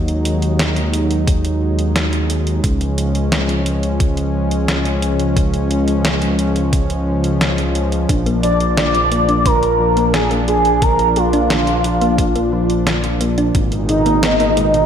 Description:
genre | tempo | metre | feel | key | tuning
synthwave | 88 BPM | 4/4 | straight | unclear | A4 = 439 Hz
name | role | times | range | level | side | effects
warm analog pad | sustained chords | 0.0-14.9 s | Bb2 to Eb4 | -21 LUFS | equal | chorus, sidechain pumping
dark detuned saw bass | bass | 0.0-14.9 s | Ab1 to Eb2 | -19 LUFS | equal | none
detuned 8-bit digital drum machine | drums | 0.1-14.9 s | hi-hat, snare drum | -22 LUFS | equal | studio reverb, slapback echo
electronic kick drum | drums | 1.3-13.7 s | none | -18 LUFS | equal | studio reverb
thumb-piano-like synth pluck | arpeggios | 8.1-14.7 s | D3 to D4 | -22 LUFS | left 3 dB | chorus, vintage 12-bit sampler grit, ping-pong delay, slapback echo
expressive synth lead | melody | 8.4-14.9 s | Eb4 to D5 | -16 LUFS | right 1 dB | wide subtle chorus, ping-pong delay, slapback echo
room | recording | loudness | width
wet lush hall reverb, RT60 1.7 s, digital ambience | big arena sound | -14 LUFS | side -8 dB against mid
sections
0.0-14.9 A section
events
none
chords
0.0 Ebm; 2.6 Db; 8.1 Bb; 13.5 Abmadd9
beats
0.59 1.27 1.96 | 2.64 3.32 4.00 4.68 | 5.37 6.05 6.73 7.41 | 8.09 8.78 9.46 10.14 | 10.82 11.50 12.18 12.87 | 13.55 14.23

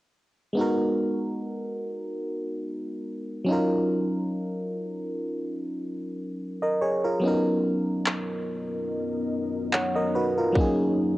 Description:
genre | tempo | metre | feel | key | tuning
contemporary R&B | 72 BPM | 4/4 | swing 54% on 16ths | unclear | A4 = 436 Hz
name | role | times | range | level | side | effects
FM electric piano | accompaniment | 0.5-11.2 s | Gb3 to F#5 | -25 LUFS | equal | chorus, cassette tape
deep dark ambient pad | sustained chords | 8.2-11.2 s | F#3 to D#5 | -32 LUFS | left 3 dB | chorus, built-in reverb, sidechain pumping, cassette tape
trap drum kit | drums | 8.1-10.8 s | handclaps, kick drum | -26 LUFS | equal | overdrive, cassette tape
room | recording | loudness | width
light reverb, digital ambience | home recording on cassette | -25 LUFS | side -17 dB against mid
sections
0.6-11.2 A section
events
none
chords
0.6 Abm9; 3.5 Ebm9; 7.2 Bmaj7; 10.6 Gb69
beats
| 0.56 1.39 2.22 3.06 | 3.89 4.72 5.56 6.39 | 7.22 8.06 8.89 9.72 | 10.56

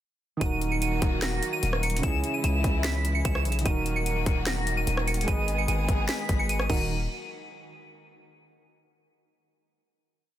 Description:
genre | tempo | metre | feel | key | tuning
hip hop, trap | 148 BPM | 4/4 | half-time | Eb phrygian | A4 = 438 Hz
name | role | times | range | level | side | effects
soft synth bell | melody | 0.4-6.9 s | Bb6 to Fb7 | -32 LUFS | right 1 dB | chorus, phaser, tape echo
soft electric-piano-like synth keys | accompaniment | 0.4-6.9 s | Db3 to Eb5 | -33 LUFS | right 4 dB | chorus
rich symphonic string section | sustained chords | 0.4-6.9 s | Db3 to Ab4 | -35 LUFS | left 1 dB | none
distorted 808-style bass | bass | 0.4-7.1 s | Eb1 to Db2 | -28 LUFS | equal | distortion
trap drum kit | drums | 0.4-6.8 s | crash cymbal, hi-hat, kick drum, rim click, snare drum | -29 LUFS | equal | none
room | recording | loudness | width
digital ambience | dense, heavily limited modern master | -24 LUFS | side -12 dB against mid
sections
0.4-6.9 hook; 6.9-8.5 final hit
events
none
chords
0.4 Ebm; 2.0 Dbm; 3.7 Ebm; 5.3 Abm; 6.7 Ebm; 6.9 N.C.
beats
| 0.41 0.82 1.22 1.63 | 2.03 2.44 2.85 3.25 | 3.65 4.06 4.47 4.87 | 5.28 5.68 6.09 6.49 | 6.90

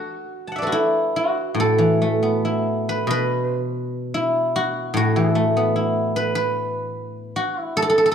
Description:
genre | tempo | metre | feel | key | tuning
chinese traditional, Chinese solo plucked strings | 68-77 BPM | 4/4 | rubato | unclear | A4 = 440 Hz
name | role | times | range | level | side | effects
guzheng | solo | 0.0-8.1 s | A2 to A5 | -19 LUFS | equal | none
room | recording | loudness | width
moderate recital hall reverb, RT60 1.6 s | dark, warm production | -19 LUFS | side -8 dB against mid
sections
0.0-8.1 A section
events
none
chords
none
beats
0.70 | 1.57 2.44 3.30 4.13 | 4.95 5.75 6.54 7.35

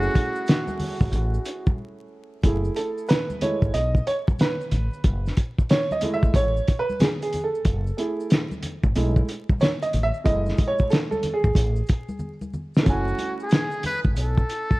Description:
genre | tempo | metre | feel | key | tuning
hip hop, jazz-hop | 92 BPM | 4/4 | swing 64% on 16ths | F# dorian | A4 = 440 Hz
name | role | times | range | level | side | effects
trumpet with metal mute | melody | 0.0-1.8, 12.9-14.8 s | F#4 to B4 | -28 LUFS | equal | slapback echo
dark baby grand piano | accompaniment | 0.0-14.8 s | G#3 to G#5 | -27 LUFS | right 2 dB | none
woody fretless electric bass | bass | 0.0-14.4 s | F#1 to B1 | -24 LUFS | equal | none
maracas and congas | percussion | 0.0-14.8 s | none | -35 LUFS | left 1 dB | none
cloth-damped thuddy drum kit | drums | 0.2-14.8 s | hi-hat, kick drum, snare drum | -21 LUFS | equal | none
room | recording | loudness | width
light reverb, small room ambience | dark, warm production, vinyl crackle | -21 LUFS | side -20 dB against mid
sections
0.0-2.4 A section; 2.4-12.9 B section; 12.9-14.8 C section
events
break 1.8-2.4; grand piano solo 2.4-12.9; drum fill 12.2-12.9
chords
0.0 F#m9; 2.4 F#m9 (rootless); 12.9 F#m9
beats
0.48 1.13 1.78 | 2.44 3.09 3.74 4.39 | 5.04 5.70 6.35 7.00 | 7.65 8.30 8.96 9.61 | 10.26 10.91 11.57 12.22 | 12.87 13.52 14.17

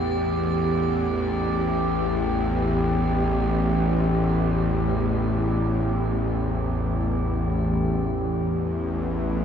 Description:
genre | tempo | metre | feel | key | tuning
dark ambient drone | free time | none | none | unclear | A4 = 440 Hz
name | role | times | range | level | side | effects
bowed-like drone | drone | 0.0-9.4 s | A1 to E2 | -22 LUFS | left 1 dB | built-in reverb
metallic inharmonic drone | texture | 0.0-7.8 s | G4 | -28 LUFS | right 2 dB | chorus, built-in reverb, shimmer reverb
room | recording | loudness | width
wet huge ambient reverb, RT60 8.1 s | nothing above 11.0 kHz | -21 LUFS | side -8 dB against mid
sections
0.0-7.8 A section; 7.8-9.4 B section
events
fade-in on synth drone 0.0-7.8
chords
0.0 Emadd11/A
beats
free time

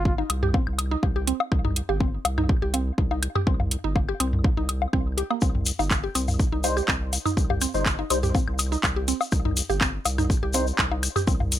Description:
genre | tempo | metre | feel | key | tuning
minimal techno | 123 BPM | 4/4 | straight | C minor | A4 = 440 Hz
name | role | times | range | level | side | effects
saturated sub bass | bass | 0.0-11.6 s | G1 to C2 | -28 LUFS | equal | sidechain pumping
electronic kick drum | drums | 0.1-11.4 s | none | -24 LUFS | equal | none
mallet-like synth pluck | riff | 0.2-11.3 s | Bb3 to G4 | -30 LUFS | right 2 dB | chorus, sidechain pumping, ping-pong delay
electronic woodblock and toms | percussion | 0.2-11.5 s | none | -28 LUFS | left 3 dB | dub echo
house drum kit | drums | 0.3-11.6 s | handclaps, hi-hat | -26 LUFS | right 1 dB | none
egg shaker | percussion | 5.4-11.6 s | none | -31 LUFS | left 5 dB | none
percussive organ stab | stabs | 6.6-10.7 s | G3 to C5 | -29 LUFS | left 2 dB | ensemble chorus, dub echo
room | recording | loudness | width
light reverb | none | -22 LUFS | side -12 dB against mid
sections
0.0-11.6 A section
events
none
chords
0.0 Cm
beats
0.06 0.54 1.03 | 1.52 2.01 2.49 2.98 | 3.47 3.96 4.45 4.93 | 5.42 5.91 6.40 6.88 | 7.37 7.86 8.35 8.84 | 9.32 9.81 10.30 10.79 | 11.27

